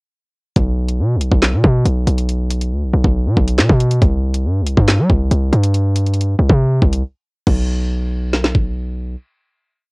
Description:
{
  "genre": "hip hop, drill",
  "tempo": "139 BPM",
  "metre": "4/4",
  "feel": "half-time",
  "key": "unclear",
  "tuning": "A4 = 440 Hz",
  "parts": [
    { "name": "hard-hitting 808-style bass", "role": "bass", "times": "0.6-9.2 s", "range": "B1 to G3", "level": "-15 LUFS", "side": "equal", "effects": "none" },
    { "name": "drill drum kit", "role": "drums", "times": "0.6-8.6 s", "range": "crash cymbal, handclaps, hi-hat, kick drum, snare drum", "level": "-16 LUFS", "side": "equal", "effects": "overdrive, cassette tape" }
  ],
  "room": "little or no reverb",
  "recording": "home recording on cassette",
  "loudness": "-14 LUFS",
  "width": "side -36 dB against mid",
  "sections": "0.6-7.5 hook; 7.5-9.9 final note",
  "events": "break 7.0-7.5",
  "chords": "none"
}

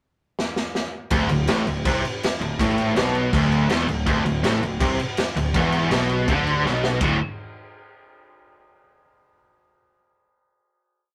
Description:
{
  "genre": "punk rock",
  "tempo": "163 BPM",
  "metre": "4/4",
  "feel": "straight",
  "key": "unclear",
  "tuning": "A4 = 440 Hz",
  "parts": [
    { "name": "raw garage drum kit", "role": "drums", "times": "0.4-7.1 s", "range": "crash cymbal, kick drum, ride cymbal, snare drum", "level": "-27 LUFS", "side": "equal", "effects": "none" },
    { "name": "crunchy overdriven guitar", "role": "riff", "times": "1.1-7.2 s", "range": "D2 to D3", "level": "-28 LUFS", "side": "equal", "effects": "none" },
    { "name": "high-gain distorted guitar", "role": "riff", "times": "1.1-7.2 s", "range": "D2 to F#4", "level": "-30 LUFS", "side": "equal", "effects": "distortion" },
    { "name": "overdriven electric guitar", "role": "riff", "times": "1.1-7.2 s", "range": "D2 to D3", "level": "-26 LUFS", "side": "equal", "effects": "none" },
    { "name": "overdriven picked electric bass", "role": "bass", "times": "1.1-7.2 s", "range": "D1 to D2", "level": "-31 LUFS", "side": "equal", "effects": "none" }
  ],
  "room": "light reverb",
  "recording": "rough rehearsal-room recording",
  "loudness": "-22 LUFS",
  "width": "mono",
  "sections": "0.0-1.1 pickup bar; 1.1-7.0 riff; 7.0-8.5 final chord",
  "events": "drum fill 0.4-1.1, 6.6-7.0",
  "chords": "0.0 N.C.; 1.1 D5"
}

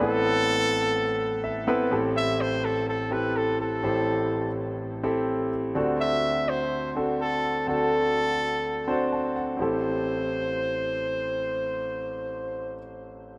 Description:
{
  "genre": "pop",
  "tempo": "125 BPM",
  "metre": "4/4",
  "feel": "swing 55% on 16ths",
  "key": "A minor",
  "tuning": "A4 = 440 Hz",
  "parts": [
    { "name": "clear trumpet", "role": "melody", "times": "0.0-12.8 s", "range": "A4 to E5", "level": "-30 LUFS", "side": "equal", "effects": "none" },
    { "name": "clear concert grand piano", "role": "accompaniment", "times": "0.0-13.4 s", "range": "A1 to C6", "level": "-29 LUFS", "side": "equal", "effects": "none" }
  ],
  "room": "wet lush hall reverb, RT60 2.4 s",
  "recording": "none",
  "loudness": "-26 LUFS",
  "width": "mono",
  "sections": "0.0-1.9 A section; 1.9-9.6 B section; 9.6-13.4 C section",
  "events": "grand piano fill 1.2-1.9, 8.6-9.6",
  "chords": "0.0 Amadd9; 1.9 Am7; 5.8 D7; 9.6 Am7"
}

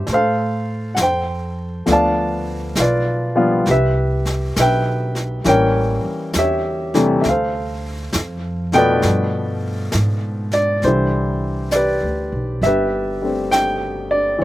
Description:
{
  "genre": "jazz ballad",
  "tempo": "67 BPM",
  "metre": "4/4",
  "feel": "swing 66% on 8ths",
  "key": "C major",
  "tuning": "A4 = 436 Hz",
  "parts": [
    { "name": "warm baby grand piano", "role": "accompaniment", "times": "0.0-14.4 s", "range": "B2 to A5", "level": "-17 LUFS", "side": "left 1 dB", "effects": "slapback echo" },
    { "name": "upright bass", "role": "bass", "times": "0.0-14.4 s", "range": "G1 to A2", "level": "-22 LUFS", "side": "right 1 dB", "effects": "none" },
    { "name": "jazz brush drum kit", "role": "drums", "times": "0.1-14.4 s", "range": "brushed snare drum, hi-hat, snare drum", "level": "-25 LUFS", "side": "equal", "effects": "none" }
  ],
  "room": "little or no reverb",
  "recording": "recorded outdoors, with no room sound",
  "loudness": "-16 LUFS",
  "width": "side -15 dB against mid",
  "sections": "0.0-10.8 A section; 10.8-14.4 B section",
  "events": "none",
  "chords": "0.1 Fadd9; 1.9 G9; 3.7 Cmaj7; 5.4 A7b9; 7.2 Dm7; 9.0 G7b9; 10.8 Cmaj9"
}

